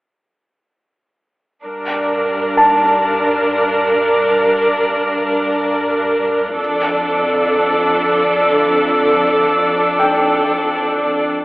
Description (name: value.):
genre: cinematic.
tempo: free time.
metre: none.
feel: none.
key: unclear.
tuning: A4 = 440 Hz.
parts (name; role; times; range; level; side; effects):
clear symphonic viola section; accompaniment; 1.6-11.3 s; D4 to Bb4; -14 LUFS; equal; none.
warm symphonic cello section; bass; 1.6-11.3 s; F2 to G2; -25 LUFS; equal; none.
felt-muted upright piano; texture; 2.6-11.4 s; G5 to A5; -18 LUFS; equal; digital delay.
room: wet scoring stage reverb, RT60 1.8 s.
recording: telephone sound.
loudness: -13 LUFS.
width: side -20 dB against mid.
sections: 1.6-11.4 A section.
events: none.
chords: 1.6 Gm; 6.6 Dm/F.